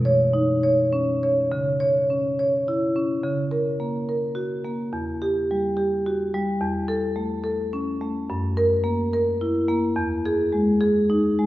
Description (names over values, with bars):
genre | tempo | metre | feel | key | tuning
classical, contemporary piece for solo marimba | 71 BPM (dotted quarters) | 6/8 | straight | C# dorian | A4 = 442 Hz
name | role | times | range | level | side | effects
marimba with medium hard mallets | solo | 0.0-11.5 s | E2 to C#5 | -20 LUFS | equal | none
room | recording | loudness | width
wet recital hall reverb, RT60 1.7 s | heard from further back in the room | -21 LUFS | side -16 dB against mid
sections
0.0-1.5 A section; 1.5-11.5 B section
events
none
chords
0.0 Badd9; 1.5 C#m; 3.2 F#/C#; 4.9 Emadd9; 6.6 A/E; 8.3 F#7; 10.0 Emaj7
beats
0.65 | 1.53 2.39 | 3.24 4.09 | 4.93 5.78 | 6.61 7.45 | 8.29 9.12 | 9.96 10.81